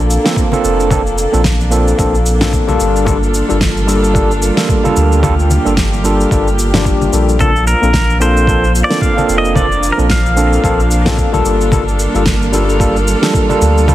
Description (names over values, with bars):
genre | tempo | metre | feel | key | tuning
sunset chillout | 111 BPM | 4/4 | swing 58% on 16ths | Bb major | A4 = 440 Hz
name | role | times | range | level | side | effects
dark chamber string section | sustained chords | 0.0-13.9 s | F3 to A4 | -19 LUFS | right 1 dB | none
warm sub bass | bass | 0.0-13.9 s | F1 to D2 | -15 LUFS | equal | none
electronic shaker and snare drum | drums | 0.1-13.9 s | none | -20 LUFS | equal | studio reverb
overdriven tine electric piano | accompaniment | 0.2-13.9 s | G3 to A4 | -16 LUFS | moving between left 6 dB and right 4 dB | auto-pan, ping-pong delay
electronic kick drum | drums | 0.4-13.9 s | none | -17 LUFS | equal | overdrive, studio reverb
congas | percussion | 0.5-13.9 s | none | -21 LUFS | left 3 dB | none
pedal steel guitar | melody | 7.4-11.4 s | A4 to F5 | -16 LUFS | equal | ping-pong delay
room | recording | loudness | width
moderate recital hall reverb, RT60 1.7 s, digital ambience | heavily compressed radio sound, multiband compression | -10 LUFS | side -14 dB against mid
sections
0.0-13.9 A section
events
none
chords
0.0 Bbmaj7; 2.8 Gm9; 7.4 Bbmaj7; 11.4 Gm9